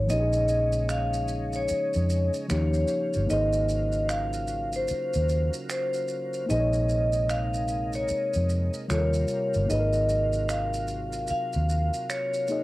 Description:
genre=R&B, neo-soul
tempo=75 BPM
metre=4/4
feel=swing 63% on 16ths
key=Bb minor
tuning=A4 = 440 Hz
part: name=vibraphone with medium hard mallets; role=melody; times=0.0-12.6 s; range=C5 to F5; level=-27 LUFS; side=equal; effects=cassette tape
part: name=mellow reed electric piano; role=accompaniment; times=0.0-12.6 s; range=C3 to Eb5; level=-33 LUFS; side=left 2 dB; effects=none
part: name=vintage muted fingered electric bass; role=bass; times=0.0-11.9 s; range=G1 to F2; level=-27 LUFS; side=equal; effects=none
part: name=tonewheel organ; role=sustained chords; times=0.1-12.6 s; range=C3 to F4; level=-37 LUFS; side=right 1 dB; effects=chorus vibrato, slow rotary speaker
part: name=maracas and finger snaps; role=percussion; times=0.1-12.6 s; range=none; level=-40 LUFS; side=right 3 dB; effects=none
room=moderate studio ambience, RT60 0.5 s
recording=home recording on cassette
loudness=-24 LUFS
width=side -18 dB against mid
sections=0.1-12.6 A section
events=none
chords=0.1 Bbm7; 2.5 Eb9; 3.3 Ab13; 6.5 Bbm11; 8.9 Eb13; 9.7 Ab13

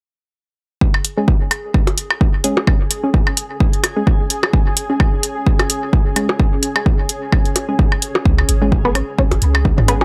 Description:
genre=minimal techno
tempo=129 BPM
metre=4/4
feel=swing 56% on 16ths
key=unclear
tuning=A4 = 440 Hz
part: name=electronic kick drum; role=drums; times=0.8-9.8 s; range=none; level=-17 LUFS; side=equal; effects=none
part: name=granular cloud pad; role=texture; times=2.6-10.0 s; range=C#4 to G#5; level=-31 LUFS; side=equal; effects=built-in reverb, sidechain pumping
part: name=pulsing gated texture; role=texture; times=0.8-10.0 s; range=G#4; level=-32 LUFS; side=equal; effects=chorus, built-in reverb, sidechain pumping
part: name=electronic percussion blips and toms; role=percussion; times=0.9-10.0 s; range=none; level=-22 LUFS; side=equal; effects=dub echo
part: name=electronic hi-hat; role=drums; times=1.0-10.0 s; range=none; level=-22 LUFS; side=equal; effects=none
part: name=wavetable chord stab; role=stabs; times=1.2-10.0 s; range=G#3 to G#4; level=-24 LUFS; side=equal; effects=dub echo
part: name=punchy sub bass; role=bass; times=8.3-10.0 s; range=G#1 to C#2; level=-19 LUFS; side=equal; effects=sidechain pumping
part: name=resonant blip pluck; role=riff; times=8.8-10.0 s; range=B3 to C#4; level=-22 LUFS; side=equal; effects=phaser, sidechain pumping, tape echo
room=light reverb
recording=none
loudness=-16 LUFS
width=mono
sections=0.8-10.0 A section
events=fade-in on ambient pad 0.8-10.0; filter sweep on synth stab 0.8-10.0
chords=0.8 C#5

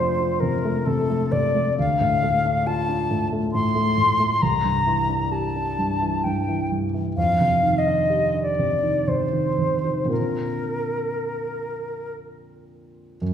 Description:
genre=classical, impressionist duo for flute and grand piano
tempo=57-69 BPM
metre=3/4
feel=rubato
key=Bb major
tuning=A4 = 439 Hz
part: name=silver concert flute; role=melody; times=0.0-12.1 s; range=A4 to C6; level=-23 LUFS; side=left 1 dB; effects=none
part: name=dark concert grand piano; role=accompaniment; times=0.0-13.3 s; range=C2 to Bb4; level=-23 LUFS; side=equal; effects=none
room=wet recital hall reverb, RT60 1.5 s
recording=heard from further back in the room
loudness=-20 LUFS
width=side -8 dB against mid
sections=0.0-13.2 A section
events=none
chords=0.0 F6; 1.8 Dm7; 4.4 C9; 7.2 Fsus2; 10.1 Bbadd9

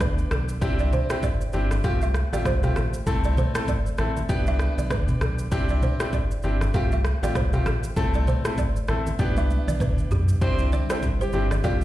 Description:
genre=afrobeats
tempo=98 BPM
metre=4/4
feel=swing 58% on 16ths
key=C major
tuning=A4 = 442 Hz
part: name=bright baby grand piano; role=accompaniment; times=0.0-11.8 s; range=A3 to A4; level=-29 LUFS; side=left 1 dB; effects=none
part: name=balafon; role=riff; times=0.0-11.7 s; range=G4 to E5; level=-33 LUFS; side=right 5 dB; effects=tape echo
part: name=sub bass with octave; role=bass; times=0.0-11.8 s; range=G1 to D2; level=-24 LUFS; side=equal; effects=none
part: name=afro-pop drum kit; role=drums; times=0.0-11.8 s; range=kick drum, rim click, shaker, toms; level=-26 LUFS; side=equal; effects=vintage 12-bit sampler grit
part: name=congas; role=percussion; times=0.0-11.8 s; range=none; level=-32 LUFS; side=right 1 dB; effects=none
part: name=warm alto saxophone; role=melody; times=10.4-11.5 s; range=G4 to C5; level=-31 LUFS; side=equal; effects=tape echo
part: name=hollow soft pad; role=sustained chords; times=10.4-11.8 s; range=C3 to F4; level=-34 LUFS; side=right 1 dB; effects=chorus, sidechain pumping
room=small room reverb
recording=played on a big sound system in a bare room, large studio reverb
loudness=-21 LUFS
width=side -15 dB against mid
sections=0.0-10.4 A section; 10.4-11.8 B section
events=drum fill 9.2-10.4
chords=0.0 Em7; 0.6 Cadd9; 1.8 Fadd9; 3.1 Am/C; 4.3 Em7; 5.5 Cadd9; 6.7 Fadd9; 8.0 Am/C; 9.2 Em7; 10.4 Cadd9

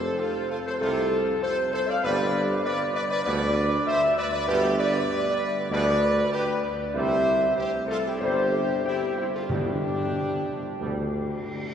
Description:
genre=classical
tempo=97 BPM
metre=4/4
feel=uneven beats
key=G mixolydian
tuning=A4 = 439 Hz
part: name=mellow trumpet section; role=melody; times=0.0-11.7 s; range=C4 to D5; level=-33 LUFS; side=right 1 dB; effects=none
part: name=mellow tuba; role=bass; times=0.0-11.3 s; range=G1 to D2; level=-29 LUFS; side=right 1 dB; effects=none
part: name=mellow French horn section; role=sustained chords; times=0.2-11.7 s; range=E4 to F5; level=-25 LUFS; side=left 1 dB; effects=none
part: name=warm trombone section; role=sustained chords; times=0.8-11.0 s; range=B2 to G3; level=-36 LUFS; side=right 1 dB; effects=none
part: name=timpani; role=percussion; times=9.5-10.4 s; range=G2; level=-32 LUFS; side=equal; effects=none
room=wet cathedral reverb, RT60 6.2 s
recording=recorded in a church or concert hall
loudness=-23 LUFS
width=side -8 dB against mid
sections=0.0-11.7 A section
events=none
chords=0.0 F; 2.0 G; 6.9 C; 9.5 G

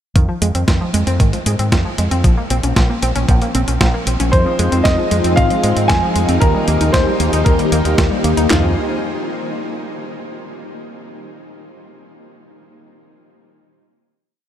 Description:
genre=italo disco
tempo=115 BPM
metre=4/4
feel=straight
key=F minor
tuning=A4 = 441 Hz
part: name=analog pluck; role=arpeggios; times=0.2-8.7 s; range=Eb3 to Eb4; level=-22 LUFS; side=right 1 dB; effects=chorus, tape echo
part: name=fingered electric bass with an envelope filter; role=bass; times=0.2-8.7 s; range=Bb1 to Ab2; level=-18 LUFS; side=equal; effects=tube saturation
part: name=clean 12-bit digital drum machine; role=drums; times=0.2-8.6 s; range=handclaps, kick drum, snare drum, toms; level=-16 LUFS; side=equal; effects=none
part: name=clean 12-bit digital drum machine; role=drums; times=0.2-8.5 s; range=hi-hat, snare drum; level=-23 LUFS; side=equal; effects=none
part: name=warm grand piano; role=melody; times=4.3-8.7 s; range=F4 to Ab5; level=-20 LUFS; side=equal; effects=analog chorus, tape echo
part: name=string machine, full ensemble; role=sustained chords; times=4.3-8.7 s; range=Ab3 to Ab5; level=-22 LUFS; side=left 1 dB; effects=ensemble chorus
part: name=mellow synth brass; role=stabs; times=4.3-8.7 s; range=Eb3 to Eb5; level=-23 LUFS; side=left 3 dB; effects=chorus, cassette tape, tape echo
room=wet huge ambient reverb, RT60 7.8 s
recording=dreamy mix soaked in reverb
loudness=-13 LUFS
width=side -10 dB against mid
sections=0.2-8.5 verse; 8.5-10.6 final chord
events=none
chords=0.2 Fm7; 2.2 Bbmadd9; 4.3 Fm7; 6.4 Eb; 8.5 Fm7

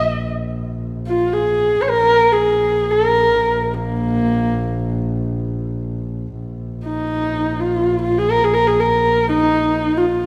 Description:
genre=mongolian traditional, Mongolian folk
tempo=free time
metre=none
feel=none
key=unclear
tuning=A4 = 440 Hz
part: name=warm horsehead fiddle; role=melody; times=0.0-10.3 s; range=Bb3 to Eb5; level=-18 LUFS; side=equal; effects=none
part: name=warm double bass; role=drone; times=0.0-10.3 s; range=Bb1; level=-26 LUFS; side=equal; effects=none
room=wet recital hall reverb, RT60 1.7 s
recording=none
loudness=-18 LUFS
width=mono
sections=0.0-6.3 A section; 6.3-10.3 A section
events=none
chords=none

